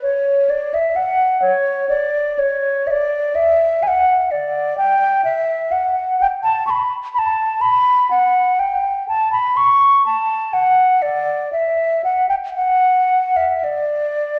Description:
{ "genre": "classical, baroque-style fantasia for unaccompanied flute", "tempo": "53-65 BPM", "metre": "3/4", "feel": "rubato", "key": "D major", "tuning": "A4 = 440 Hz", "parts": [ { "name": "wooden flute", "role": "solo", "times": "0.0-14.4 s", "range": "C#5 to C#6", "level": "-17 LUFS", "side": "equal", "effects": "none" } ], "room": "wet recital hall reverb, RT60 1.5 s", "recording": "none", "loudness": "-17 LUFS", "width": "mono", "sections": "0.0-14.4 A section", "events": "none", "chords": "none" }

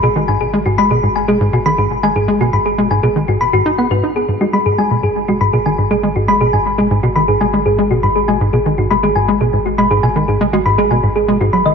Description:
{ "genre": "ambient, sequencer-driven space music", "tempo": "120 BPM", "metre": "4/4", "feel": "straight", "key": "G# minor", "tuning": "A4 = 441 Hz", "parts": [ { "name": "thumb-piano-like synth pluck", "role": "arpeggios", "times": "0.0-11.7 s", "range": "F#4 to B5", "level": "-15 LUFS", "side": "left 1 dB", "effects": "chorus, auto-pan, analog delay" }, { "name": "tight sequencer bass", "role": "riff", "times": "0.0-11.7 s", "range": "G#2 to D#4", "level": "-15 LUFS", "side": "equal", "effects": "lush chorus, analog delay" }, { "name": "warm sub bass", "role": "bass", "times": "0.0-11.7 s", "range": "G#1", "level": "-27 LUFS", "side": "equal", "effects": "none" } ], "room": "wet plate reverb, RT60 3.4 s", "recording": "none", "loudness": "-12 LUFS", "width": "side -6 dB against mid", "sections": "0.0-11.7 A section", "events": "none", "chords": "0.0 G#m7" }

